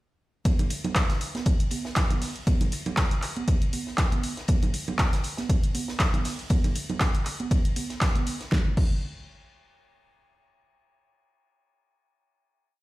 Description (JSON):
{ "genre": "house", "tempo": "119 BPM", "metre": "4/4", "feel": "swing 55% on 16ths", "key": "none", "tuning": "none", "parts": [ { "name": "compact cocktail drum kit", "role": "drums", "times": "0.5-8.5 s", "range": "hi-hat, ride cymbal, snare drum", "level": "-39 LUFS", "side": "left 1 dB", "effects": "high-pass filter on cymbals, studio reverb, high-pass filter on hats, high-pass filter on snare, high-pass filter on room" }, { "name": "deep house drum kit", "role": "drums", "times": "0.5-8.9 s", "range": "crash cymbal, handclaps, hi-hat, snare drum", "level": "-31 LUFS", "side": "equal", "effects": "overdrive, studio reverb" }, { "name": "electronic kick drum", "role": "drums", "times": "0.5-8.9 s", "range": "none", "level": "-24 LUFS", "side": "equal", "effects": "overdrive, studio reverb" }, { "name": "congas", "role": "percussion", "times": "0.5-8.2 s", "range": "none", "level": "-33 LUFS", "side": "right 4 dB", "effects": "studio reverb" } ], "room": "studio ambience", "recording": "played on a big sound system in a bare room, stone room reverb", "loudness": "-23 LUFS", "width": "side -18 dB against mid", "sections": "0.5-8.5 groove; 8.5-10.5 final hit", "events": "none", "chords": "none" }